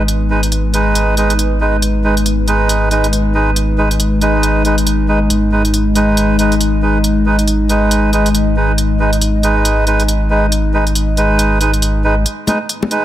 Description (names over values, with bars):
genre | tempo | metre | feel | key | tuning
deep dubstep | 138 BPM | 4/4 | swing 59% on 16ths, half-time | G# minor | A4 = 440 Hz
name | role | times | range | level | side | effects
dark analog pad | sustained chords | 0.0-13.0 s | G#3 to D#5 | -18 LUFS | left 2 dB | chorus
melodica | stabs | 0.0-13.0 s | G#3 to B4 | -17 LUFS | right 2 dB | dub echo
saturated sub bass | bass | 0.0-12.2 s | G#1 | -15 LUFS | equal | none
electronic hi-hat | drums | 0.1-13.0 s | none | -20 LUFS | equal | small room ambience
congas and bongos | percussion | 12.5-12.9 s | none | -18 LUFS | left 3 dB | none
room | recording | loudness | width
moderate echo chamber reverb, RT60 1.4 s | none | -11 LUFS | side -13 dB against mid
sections
0.0-12.3 A section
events
none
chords
0.0 G#m